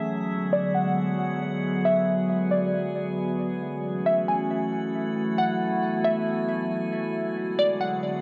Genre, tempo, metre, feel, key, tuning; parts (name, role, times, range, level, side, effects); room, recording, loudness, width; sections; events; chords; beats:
hip hop; 136 BPM; 4/4; half-time; A4 = 440 Hz
warbly tape-like pad; sustained chords; 0.0-8.2 s; D3 to F#4; -29 LUFS; equal; chorus, built-in reverb, low-pass filter
drifting glass-harmonics texture; texture; 0.0-8.2 s; B3 to G#5; -36 LUFS; equal; chorus, built-in reverb
glassy wavetable pluck; melody; 0.5-8.2 s; D5 to G#5; -29 LUFS; equal; chorus, low-pass filter, tape echo
moderate huge ambient reverb, RT60 5.9 s; -26 LUFS; mono
0.0-8.2 A section
filter sweep 0.0-8.2
0.1 G#m7b5; 3.6 F#m7; 7.1 G#m7b5
| 0.09 0.53 0.97 1.41 | 1.85 2.29 2.73 3.18 | 3.62 4.06 4.50 4.94 | 5.38 5.82 6.26 6.71 | 7.15 7.59 8.03